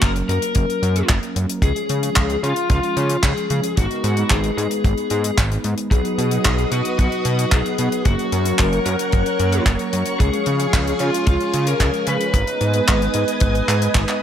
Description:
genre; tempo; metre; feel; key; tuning
italo disco; 112 BPM; 4/4; straight; F# major; A4 = 442 Hz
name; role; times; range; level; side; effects
lead guitar through a small cranked amp; melody; 0.0-13.9 s; E#4 to B4; -23 LUFS; left 3 dB; overdrive, digital delay
mellow synth brass; stabs; 0.0-14.2 s; E#3 to A#5; -26 LUFS; right 3 dB; chorus
fat analog bass; bass; 0.0-14.1 s; F#1 to C#3; -22 LUFS; equal; none
damped 70s drum kit; drums; 0.0-14.2 s; handclaps, hi-hat; -24 LUFS; left 1 dB; none
kick drum; drums; 0.0-14.1 s; none; -18 LUFS; equal; none
string machine, full ensemble; sustained chords; 5.9-14.2 s; G#4 to D#6; -25 LUFS; equal; ensemble chorus
room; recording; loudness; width
light reverb, small room ambience; none; -16 LUFS; side -9 dB against mid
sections
0.0-14.2 A section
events
none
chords
0.0 F#; 1.6 C#; 3.8 G#m; 5.9 B; 8.1 F#; 10.2 C#; 12.3 G#m

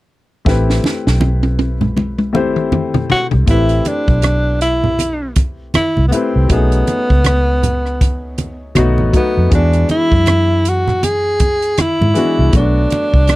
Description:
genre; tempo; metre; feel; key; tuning
lush 1970s-style soul; 80 BPM; 4/4; swing 58% on 16ths; A dorian; A4 = 440 Hz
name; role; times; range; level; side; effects
warm baby grand piano; accompaniment; 0.4-13.4 s; E3 to C5; -20 LUFS; left 3 dB; none
vintage muted fingered electric bass; bass; 0.5-13.4 s; A1 to G#2; -16 LUFS; equal; none
compact cocktail drum kit; drums; 0.5-13.4 s; hi-hat, kick drum, rim click, snare drum, toms; -16 LUFS; equal; none
congas; percussion; 0.8-13.4 s; none; -20 LUFS; right 2 dB; none
breathy tenor saxophone; melody; 3.1-13.4 s; B3 to G#4; -16 LUFS; equal; none
room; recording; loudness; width
little or no reverb; dry, close 1970s-style studio recording; -12 LUFS; side -18 dB against mid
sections
0.5-3.5 A section; 3.5-13.4 B section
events
drum fill 0.5-3.5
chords
0.5 Am9; 6.5 B13; 8.8 B7; 9.5 E9; 12.5 Bm7

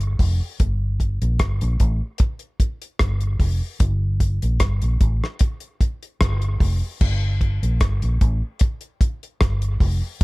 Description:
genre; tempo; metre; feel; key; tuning
dub reggae; 75 BPM; 4/4; straight; G minor; A4 = 438 Hz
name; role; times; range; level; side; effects
vintage muted fingered electric bass; bass; 0.0-10.2 s; F1 to Bb1; -20 LUFS; equal; none
damped 70s drum kit; drums; 0.0-10.2 s; crash cymbal, hi-hat, kick drum, rim click; -20 LUFS; equal; none
room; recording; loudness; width
little or no reverb; none; -19 LUFS; side -23 dB against mid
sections
0.0-7.0 A section; 7.0-10.2 A section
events
none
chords
none

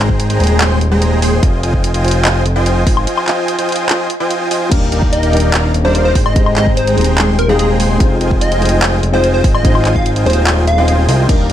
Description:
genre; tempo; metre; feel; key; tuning
future bass; 146 BPM; 4/4; half-time; F dorian; A4 = 441 Hz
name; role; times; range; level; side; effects
dense compressed supersaw; riff; 0.0-11.5 s; Ab3 to C6; -17 LUFS; equal; cassette tape, sidechain pumping
fat analog bass; bass; 0.0-11.5 s; Eb1 to C2; -15 LUFS; equal; sidechain pumping
electronic kick drum; drums; 0.1-11.4 s; none; -14 LUFS; equal; none
pop drum kit; drums; 0.2-11.5 s; crash cymbal, handclaps, hi-hat, woodblock; -19 LUFS; equal; none
felt-muted upright piano; accompaniment; 4.7-11.5 s; G3 to F5; -19 LUFS; left 4 dB; sidechain pumping, ping-pong delay
plucky unison lead; melody; 5.1-11.0 s; Ab4 to F5; -18 LUFS; right 1 dB; cassette tape, sidechain pumping, dub echo
room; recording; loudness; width
light reverb; dark, warm production; -11 LUFS; side -11 dB against mid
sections
0.0-11.5 A section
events
break 3.1-4.7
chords
0.0 Abmaj7; 1.4 Fm7; 4.7 Ebmaj7; 6.2 Abmaj7; 8.0 Fm7

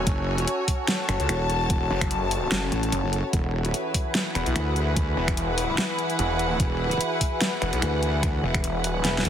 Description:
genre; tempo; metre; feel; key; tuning
heavy wobble dubstep; 147 BPM; 4/4; swing 54% on 16ths, half-time; unclear; A4 = 441 Hz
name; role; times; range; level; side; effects
evolving wavetable pad; sustained chords; 0.0-9.3 s; E3 to B4; -30 LUFS; equal; phaser, built-in reverb, sidechain pumping
snarling distorted saw bass; bass; 0.0-9.0 s; E1 to C#2; -27 LUFS; equal; distortion, overdrive
dark studio string section; texture; 0.0-9.3 s; E4 to A5; -29 LUFS; left 2 dB; sidechain pumping
wobble bass; bass; 0.1-9.3 s; E1 to D2; -26 LUFS; equal; chorus, overdrive
dubstep drum kit; drums; 0.1-9.3 s; finger snaps, hi-hat, snare drum; -27 LUFS; equal; overdrive
electronic kick drum; drums; 0.1-8.6 s; none; -26 LUFS; equal; overdrive
room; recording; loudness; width
light reverb; heavily compressed radio sound, multiband compression; -22 LUFS; side -9 dB against mid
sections
0.0-9.3 A section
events
drum fill 9.0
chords
0.0 F#m; 3.3 Eadd9

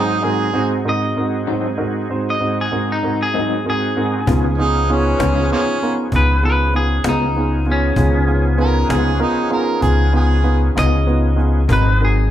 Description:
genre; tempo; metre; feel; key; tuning
slow blues; 65 BPM (dotted quarters); 12/8; straight; unclear; A4 = 440 Hz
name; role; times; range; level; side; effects
warm harmonica; second line; 0.0-10.6 s; F3 to Bb4; -21 LUFS; right 2 dB; overdrive
warm grand piano; accompaniment; 0.0-12.2 s; Ab2 to C5; -20 LUFS; right 2 dB; none
bright tonewheel organ; sustained chords; 0.0-12.3 s; F3 to Ab4; -25 LUFS; equal; slow rotary speaker, chorus vibrato
clean electric guitar; melody; 0.9-12.3 s; Db4 to Eb5; -21 LUFS; left 1 dB; none
electric guitar through a small old amp; accompaniment; 1.5-11.9 s; Ab2 to F4; -25 LUFS; left 5 dB; tremolo
upright bass; bass; 4.3-12.3 s; Ab1 to Db2; -16 LUFS; left 1 dB; none
cajon; drums; 4.3-12.1 s; none; -22 LUFS; equal; none
room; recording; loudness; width
light reverb; band playing live in one room; -14 LUFS; side -11 dB against mid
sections
0.0-12.3 A section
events
none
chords
0.0 Ab7; 4.3 Db7; 11.7 Ab7

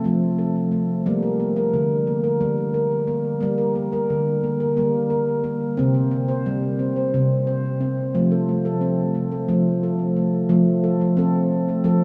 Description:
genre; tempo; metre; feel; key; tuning
world meditative, meditative tuned percussion; 178 BPM (eighths); 7/8; straight; unclear; A4 = 442 Hz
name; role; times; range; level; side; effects
handpan; solo; 0.0-12.0 s; C3 to C5; -21 LUFS; equal; tape echo
room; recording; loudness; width
wet cathedral reverb, RT60 7.0 s; in a vast, echoing space; -21 LUFS; mono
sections
0.0-10.5 A section; 10.5-12.0 B section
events
none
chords
0.0 F; 1.1 Gm; 5.8 C5; 8.1 F

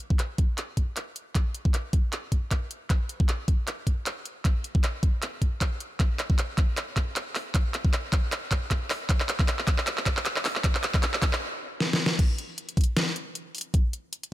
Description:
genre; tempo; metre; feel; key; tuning
future bass; 155 BPM; 4/4; swing 55% on 16ths, half-time; none; none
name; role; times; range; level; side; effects
pop drum kit; drums; 0.0-14.3 s; crash cymbal, handclaps, hi-hat, snare drum; -29 LUFS; equal; overdrive
electronic kick drum; drums; 0.1-13.8 s; none; -24 LUFS; equal; overdrive
room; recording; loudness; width
little or no reverb; none; -24 LUFS; side -15 dB against mid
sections
0.0-12.2 A section; 12.2-14.3 B section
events
build-up 0.0-12.2; drum fill 0.0-11.4, 11.8-12.2; stop 11.4-12.2; drop 12.2-14.3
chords
none

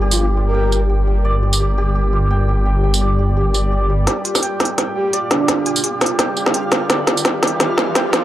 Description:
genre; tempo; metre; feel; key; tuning
half-time drum and bass; 170 BPM; 4/4; swing 57% on 16ths, half-time; G minor; A4 = 440 Hz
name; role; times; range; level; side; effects
deep dark ambient pad; sustained chords; 0.0-8.2 s; G3 to D5; -27 LUFS; left 1 dB; chorus, built-in reverb
santur; arpeggios; 0.0-8.2 s; G3 to G5; -23 LUFS; right 1 dB; vintage 12-bit sampler grit, low-pass filter, tape echo
phased detuned saw bass; bass; 0.0-4.1 s; G1; -16 LUFS; equal; phaser
breathy flute-like synth lead; melody; 0.1-0.8, 5.0-5.8 s; D4 to Bb4; -24 LUFS; right 2 dB; analog chorus, tape echo
organic electronic drum kit; drums; 0.1-8.2 s; hi-hat, snare drum, tambourine; -17 LUFS; equal; none
riser; sound effects; 4.9-8.2 s; none; -29 LUFS; equal; none
backwards swelling texture; texture; 4.9-8.2 s; F4; -27 LUFS; right 3 dB; built-in reverb
room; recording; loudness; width
digital ambience; dry, gritty hardware recording, transformer saturation, high-pass filter; -14 LUFS; side -13 dB against mid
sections
0.0-4.1 A section; 4.1-8.2 B section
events
build-up 4.1-8.2; drum fill 4.1-8.2; filter sweep on ambient pad 4.1-8.2; riser 4.9-8.2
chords
0.0 Gm

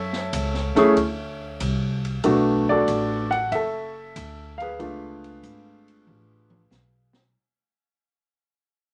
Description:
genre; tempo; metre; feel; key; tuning
jazz piano trio; 94 BPM; 4/4; swing 69% on 8ths; unclear; A4 = 440 Hz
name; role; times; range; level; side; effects
warm concert grand piano; melody; 0.0-7.1 s; A3 to F#5; -24 LUFS; equal; none
upright bass; bass; 0.0-7.3 s; F#1 to F#2; -32 LUFS; equal; none
open jazz drum kit; drums; 0.1-7.3 s; hi-hat, kick drum, ride cymbal, snare drum, toms; -39 LUFS; equal; none
room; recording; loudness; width
light reverb; none; -23 LUFS; mono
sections
0.0-7.3 A section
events
fade-out 0.0-7.3; drum fill 6.1-7.3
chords
0.0 F#m7; 2.2 Bm7; 4.8 C#7b9b13

